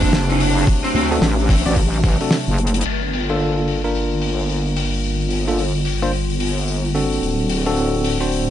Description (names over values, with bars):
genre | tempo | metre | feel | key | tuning
glitch hop | 110 BPM | 4/4 | swing 62% on 16ths | G minor | A4 = 440 Hz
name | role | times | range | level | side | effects
lead guitar through a small cranked amp | melody | 0.0-1.1 s | C4 to D4 | -24 LUFS | right 2 dB | overdrive, tape echo
warbly tape-like pad | sustained chords | 0.0-8.5 s | C3 to F#4 | -27 LUFS | left 1 dB | chorus, built-in reverb, vintage 12-bit sampler grit, sidechain pumping
bell-like tine electric piano | stabs | 0.0-8.5 s | Bb3 to D5 | -23 LUFS | equal | medium stereo tremolo, sidechain pumping, tape echo
wobble bass | bass | 0.0-8.5 s | D1 to D2 | -20 LUFS | equal | chorus, tube saturation
damped 70s drum kit | drums | 0.0-8.4 s | crash cymbal, hi-hat, rim click, snare drum | -24 LUFS | left 3 dB | low-pass filter on hats, low-pass filter on cymbals, low-pass filter on snare, low-pass filter on room
electronic kick drum | drums | 0.0-2.2 s | none | -18 LUFS | equal | overdrive
room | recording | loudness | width
small room ambience | nothing above 10.7 kHz | -16 LUFS | side -11 dB against mid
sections
0.0-2.9 A section; 2.9-8.5 B section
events
drop 0.0-2.9; kick drops out 2.3-2.9; drum fill 2.6; filter sweep on ambient pad 2.9-8.5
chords
0.0 D7; 2.9 Gm7; 7.2 D7